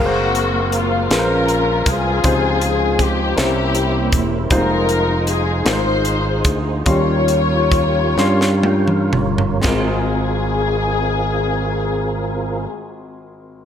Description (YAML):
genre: slow gospel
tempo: 38-53 BPM (dotted quarters)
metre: 6/8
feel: straight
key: Ab major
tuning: A4 = 440 Hz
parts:
  - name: dark studio string section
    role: melody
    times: 0.0-12.7 s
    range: Bb3 to Db5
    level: -20 LUFS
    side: left 4 dB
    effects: none
  - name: warm upright piano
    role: accompaniment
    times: 0.0-13.7 s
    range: Ab1 to C6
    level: -22 LUFS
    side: left 1 dB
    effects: none
  - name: percussive tonewheel organ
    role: sustained chords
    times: 0.0-12.7 s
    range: F3 to G5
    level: -25 LUFS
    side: right 4 dB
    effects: chorus vibrato, fast rotary speaker
  - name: modern bright fingered electric bass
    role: bass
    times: 0.0-12.7 s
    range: E1 to G2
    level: -21 LUFS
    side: equal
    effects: none
  - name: crisp fusion drum kit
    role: drums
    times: 0.3-9.9 s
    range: china cymbal, hi-hat, kick drum, snare drum, toms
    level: -20 LUFS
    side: equal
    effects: none
room: light reverb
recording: none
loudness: -15 LUFS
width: side -9 dB against mid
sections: 0.0-9.6 A section; 9.6-12.8 B section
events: slowing down 4.5-9.6; drum fill 8.2-9.6; tonewheel organ fill 8.2-9.6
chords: 0.0 Gbmaj9#11; 2.2 Dbmaj9; 3.4 C7b9; 4.5 Fm7; 6.9 Eb13; 9.6 Ab69